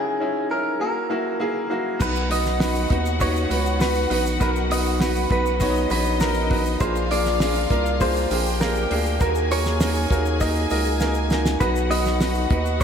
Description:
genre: piano-driven pop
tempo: 100 BPM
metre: 4/4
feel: straight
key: B major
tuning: A4 = 441 Hz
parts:
  - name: direct-recorded clean electric guitar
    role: melody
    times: 0.0-12.8 s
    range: G#4 to D#5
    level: -26 LUFS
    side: equal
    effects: lush chorus
  - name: bright upright piano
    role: accompaniment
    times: 0.0-12.8 s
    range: A#2 to C#5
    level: -24 LUFS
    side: equal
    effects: none
  - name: warm studio violin section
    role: second line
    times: 2.0-12.8 s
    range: D#4 to G#5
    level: -29 LUFS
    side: left 3 dB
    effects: none
  - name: round analog bass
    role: bass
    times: 2.0-12.8 s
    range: A#1 to D#2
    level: -24 LUFS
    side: equal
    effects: none
  - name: damped 70s drum kit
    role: drums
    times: 2.0-12.8 s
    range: crash cymbal, hi-hat, kick drum, snare drum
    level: -26 LUFS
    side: right 1 dB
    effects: none
  - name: tube shaker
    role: percussion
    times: 2.0-12.8 s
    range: none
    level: -41 LUFS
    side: left 9 dB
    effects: none
room: moderate plate reverb, RT60 2.8 s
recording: dreamy mix soaked in reverb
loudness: -19 LUFS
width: side -7 dB against mid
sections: 0.0-2.0 A section; 2.0-12.8 B section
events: break 0.0-2.0; drum fill 11.0-11.6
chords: 0.0 C#madd9; 0.8 F#7; 2.0 B; 6.8 A#7; 9.2 D#m; 11.6 B

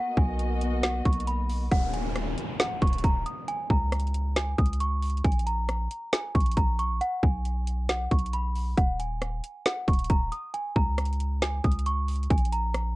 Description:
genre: hip hop, trap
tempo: 136 BPM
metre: 4/4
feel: half-time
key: Eb minor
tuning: A4 = 437 Hz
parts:
  - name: small celesta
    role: melody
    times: 0.0-13.0 s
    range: F#5 to Eb6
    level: -32 LUFS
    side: right 1 dB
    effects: low-pass filter, tape echo
  - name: muted studio string section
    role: sustained chords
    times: 0.0-1.7 s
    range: A#3 to D#5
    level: -34 LUFS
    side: left 1 dB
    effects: none
  - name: long sustained 808-style bass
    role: bass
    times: 0.2-12.9 s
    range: Eb1 to Db2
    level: -29 LUFS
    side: equal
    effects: none
  - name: trap drum kit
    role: drums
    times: 0.2-12.8 s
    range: hi-hat, kick drum, rim click, snare drum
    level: -25 LUFS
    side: equal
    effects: vintage 12-bit sampler grit
  - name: downlifter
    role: sound effects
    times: 1.7-5.2 s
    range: none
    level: -36 LUFS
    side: left 1 dB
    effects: none
room: little or no reverb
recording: cassette tape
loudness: -24 LUFS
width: side -19 dB against mid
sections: 0.0-1.7 A section; 1.7-13.0 B section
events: none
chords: 0.0 Bmaj7; 1.7 Ebmadd11; 3.5 Bbm7/Db; 5.2 Bbm7; 7.0 Abm7/Cb; 8.8 Ebmadd11; 10.5 Bbm7/Db; 12.3 Bb7(no3)

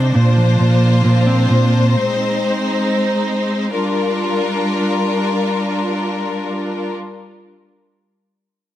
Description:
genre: hip hop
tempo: free time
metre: none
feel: none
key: G phrygian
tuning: A4 = 440 Hz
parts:
  - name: mellow electric guitar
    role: accompaniment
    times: 0.0-1.9 s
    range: Bb2 to C4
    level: -13 LUFS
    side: right 1 dB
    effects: none
  - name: clear symphonic string section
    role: sustained chords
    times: 0.0-6.9 s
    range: G3 to C5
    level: -17 LUFS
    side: left 1 dB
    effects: none
room: moderate recital hall reverb, RT60 1.6 s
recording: heavily compressed radio sound, multiband compression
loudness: -14 LUFS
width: side -12 dB against mid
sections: 0.0-3.7 A section; 3.7-7.3 B section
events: none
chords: 0.1 Bbadd9; 1.9 Ab; 3.7 Gm7

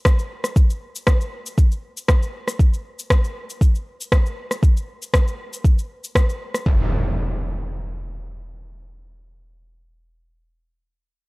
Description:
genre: afro house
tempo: 118 BPM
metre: 4/4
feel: swing 53% on 16ths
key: none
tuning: none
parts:
  - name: electronic kick drum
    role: drums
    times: 0.1-6.8 s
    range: none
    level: -15 LUFS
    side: equal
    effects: small room ambience
  - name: electronic rim click and shaker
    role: drums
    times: 0.1-6.6 s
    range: none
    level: -24 LUFS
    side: equal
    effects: small room ambience
  - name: impact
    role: sound effects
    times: 6.7-10.4 s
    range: none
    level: -25 LUFS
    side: equal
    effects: none
room: little or no reverb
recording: dry, gritty hardware recording, cassette tape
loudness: -18 LUFS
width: side -25 dB against mid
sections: 0.0-6.7 A section; 6.7-10.7 B section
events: none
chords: none

